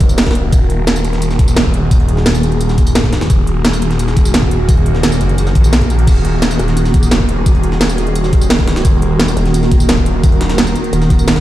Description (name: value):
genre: dark technical drum and bass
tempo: 173 BPM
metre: 4/4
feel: straight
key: Eb minor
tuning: A4 = 440 Hz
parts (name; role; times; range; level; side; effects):
- swarming drone; sustained chords; 0.0-11.4 s; Eb3 to Bb4; -18 LUFS; right 1 dB; built-in reverb, sidechain pumping
- phased detuned saw bass; bass; 0.0-10.7 s; Eb1 to Bb1; -15 LUFS; equal; phaser, overdrive
- breakbeat sampler-style drum kit; drums; 0.0-11.4 s; hi-hat, snare drum; -25 LUFS; equal; high-pass filter on hats, high-pass filter on snare
- drum and bass drum kit; drums; 0.0-11.3 s; crash cymbal, hi-hat, snare drum, tambourine; -17 LUFS; right 1 dB; none
- electronic kick drum; drums; 0.0-11.4 s; none; -12 LUFS; equal; none
- vowel-sweep wobble bass; bass; 6.6-7.1, 9.4-11.4 s; Eb1; -13 LUFS; equal; chorus
room: light reverb, digital ambience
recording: played on a big sound system in a bare room, stone room reverb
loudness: -10 LUFS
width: side -14 dB against mid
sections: 0.0-11.4 A section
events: none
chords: 0.0 Ebm